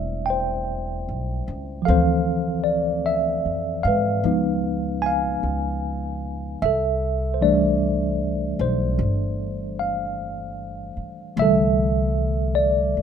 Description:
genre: jazz ballad.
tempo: 50 BPM.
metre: 4/4.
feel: swing 66% on 8ths.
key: C major.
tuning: A4 = 439 Hz.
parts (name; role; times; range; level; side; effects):
mellow tine electric piano; accompaniment; 0.0-13.0 s; D3 to Ab5; -22 LUFS; equal; medium stereo tremolo.
upright bass; bass; 0.0-13.0 s; E1 to Ab2; -26 LUFS; equal; none.
room: light reverb.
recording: minimal, uncompressed stereo recording.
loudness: -20 LUFS.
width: side -8 dB against mid.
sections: 0.0-13.0 A section.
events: none.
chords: 0.0 Am9; 1.9 Dm7; 4.3 Db9; 6.6 C6.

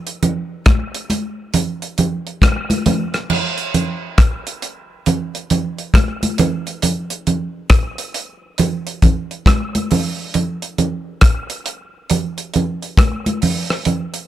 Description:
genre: reggae.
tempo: 68 BPM.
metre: 4/4.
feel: swing 64% on 16ths.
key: none.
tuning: none.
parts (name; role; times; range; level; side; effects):
damped 70s drum kit; drums; 0.1-14.3 s; crash cymbal, hi-hat, kick drum, rim click; -16 LUFS; left 1 dB; none.
congas; percussion; 0.2-14.1 s; none; -18 LUFS; right 2 dB; none.
room: light reverb.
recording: none.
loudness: -16 LUFS.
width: side -13 dB against mid.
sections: 0.0-3.3 A section; 3.3-14.3 A section.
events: none.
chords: none.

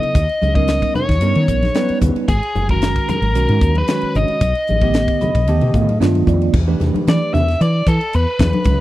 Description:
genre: electric jazz fusion.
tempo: 113 BPM.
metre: 4/4.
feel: straight.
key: unclear.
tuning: A4 = 440 Hz.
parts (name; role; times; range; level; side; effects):
biting lead guitar; melody; 0.0-8.8 s; G#4 to E5; -20 LUFS; left 1 dB; overdrive, tape echo.
bell-like tine electric piano; accompaniment; 0.0-7.4 s; C#3 to B5; -20 LUFS; right 3 dB; medium stereo tremolo, lush chorus.
woody fretless electric bass; bass; 0.0-8.8 s; F#1 to E3; -17 LUFS; equal; lush chorus.
crisp fusion drum kit; drums; 0.0-8.8 s; crash cymbal, hi-hat, kick drum, ride cymbal, snare drum; -20 LUFS; equal; none.
congas; percussion; 0.4-8.8 s; none; -24 LUFS; left 3 dB; none.
room: little or no reverb.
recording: dry, close 1970s-style studio recording.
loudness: -14 LUFS.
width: side -15 dB against mid.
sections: 0.0-6.5 A section; 6.5-8.8 B section.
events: tine electric piano fill 4.9-6.5; lead electric guitar solo 6.5-8.8.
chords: 0.2 D#7b13; 2.3 G#9sus4; 4.4 B7alt; 6.5 Em7.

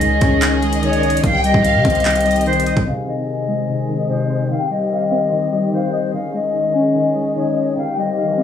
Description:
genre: hip hop, trap.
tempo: 147 BPM.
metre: 4/4.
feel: half-time.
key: C phrygian.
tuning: A4 = 439 Hz.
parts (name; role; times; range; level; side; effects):
silver concert flute; melody; 0.0-8.4 s; C5 to F5; -20 LUFS; left 3 dB; tape echo.
warbly lo-fi synth keys; accompaniment; 0.0-8.4 s; C3 to Eb5; -20 LUFS; left 2 dB; chorus.
dark studio string section; sustained chords; 0.0-8.4 s; Eb3 to Ab4; -25 LUFS; equal; none.
warm 808-style bass; bass; 0.0-2.9 s; C2 to C3; -21 LUFS; equal; none.
trap drum kit; drums; 0.0-2.9 s; handclaps, hi-hat, kick drum; -20 LUFS; right 1 dB; overdrive.
rich studio violin section; second line; 0.4-8.4 s; Eb5 to G5; -24 LUFS; left 2 dB; tape echo.
riser; sound effects; 8.0-8.4 s; none; -31 LUFS; left 1 dB; none.
room: light reverb.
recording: low-pass filter, studio reverb.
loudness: -15 LUFS.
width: side -8 dB against mid.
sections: 0.0-2.9 A section; 2.9-8.4 B section.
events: filter sweep 2.9-8.4; riser 8.0-8.4.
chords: 0.0 Dbsus2; 1.2 Cm; 2.9 Ab; 4.5 Cm; 6.1 Dbsus2; 7.8 Cm.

